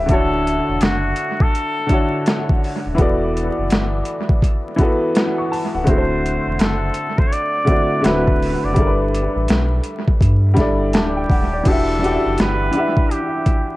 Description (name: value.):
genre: lo-fi hip hop.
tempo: 83 BPM.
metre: 4/4.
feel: swing 63% on 16ths.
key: unclear.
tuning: A4 = 440 Hz.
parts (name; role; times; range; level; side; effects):
clear upright piano; accompaniment; 0.0-13.8 s; D3 to C#6; -20 LUFS; left 1 dB; cassette tape, low-pass filter, analog delay.
sub bass with octave; bass; 0.0-12.7 s; C#1 to G2; -21 LUFS; equal; none.
trumpet with straight mute; melody; 0.1-13.8 s; F#4 to D5; -23 LUFS; equal; low-pass filter, analog delay.
boom bap sampler-style drum kit; drums; 0.1-13.7 s; crash cymbal, hi-hat, kick drum, snare drum; -18 LUFS; equal; overdrive, analog delay.
room: light reverb, digital ambience.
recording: echo-heavy mix, vinyl crackle.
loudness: -15 LUFS.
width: side -18 dB against mid.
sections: 0.0-11.7 A section; 11.7-13.8 B section.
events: none.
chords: 0.1 Dmaj9; 3.0 E9sus4; 5.9 D9; 8.0 D13; 8.8 G6; 11.7 Em7.